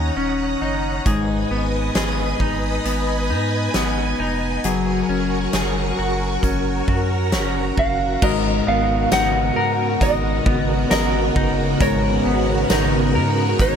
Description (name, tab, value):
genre	dream pop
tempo	67 BPM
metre	4/4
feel	straight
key	G# minor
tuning	A4 = 440 Hz
part	string machine, violins	sustained chords	0.0-13.8 s	C#3 to D#6	-23 LUFS	right 1 dB	ensemble chorus
part	clean electric guitar	arpeggios	0.0-13.8 s	G#2 to A#4	-22 LUFS	left 3 dB	wide subtle chorus, ping-pong delay
part	saturated sub bass	bass	0.0-13.8 s	D#1 to G#2	-24 LUFS	right 1 dB	none
part	huge arena drum kit	drums	1.1-13.8 s	crash cymbal, hi-hat, kick drum, snare drum, tambourine	-24 LUFS	equal	none
part	electric slide guitar	melody	7.8-13.8 s	C#5 to F#5	-23 LUFS	equal	ping-pong delay
part	glassy synth bell	texture	8.2-13.8 s	F#4 to A#4	-33 LUFS	equal	none
room	light reverb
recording	none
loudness	-17 LUFS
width	side -7 dB against mid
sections	0.0-8.2 A section; 8.2-13.8 B section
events	none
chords	0.0 D#m7; 1.1 G#m; 4.6 F#add9